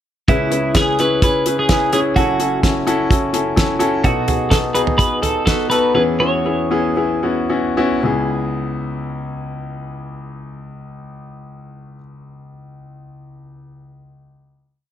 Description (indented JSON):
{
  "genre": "piano-driven pop",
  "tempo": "109-128 BPM",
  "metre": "4/4",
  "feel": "straight",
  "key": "C# minor",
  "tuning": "A4 = 439 Hz",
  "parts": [
    { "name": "twelve-string electric guitar", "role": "melody", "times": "0.3-6.7 s", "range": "E4 to C#5", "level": "-18 LUFS", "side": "right 1 dB", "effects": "none" },
    { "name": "clear concert grand piano", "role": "accompaniment", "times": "0.3-14.9 s", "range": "F#1 to C#5", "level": "-19 LUFS", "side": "left 2 dB", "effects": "none" },
    { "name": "damped 70s drum kit", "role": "drums", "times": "0.3-5.8 s", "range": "hi-hat, kick drum, snare drum, toms", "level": "-18 LUFS", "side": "right 1 dB", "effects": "none" }
  ],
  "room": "light reverb",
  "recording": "none",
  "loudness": "-15 LUFS",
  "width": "side -10 dB against mid",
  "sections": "0.3-8.0 verse; 8.0-12.4 final chord",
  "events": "slowing down 4.0-8.0",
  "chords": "0.3 C#m7; 2.2 F#m7; 4.0 B7; 6.0 E6; 8.0 C#m7"
}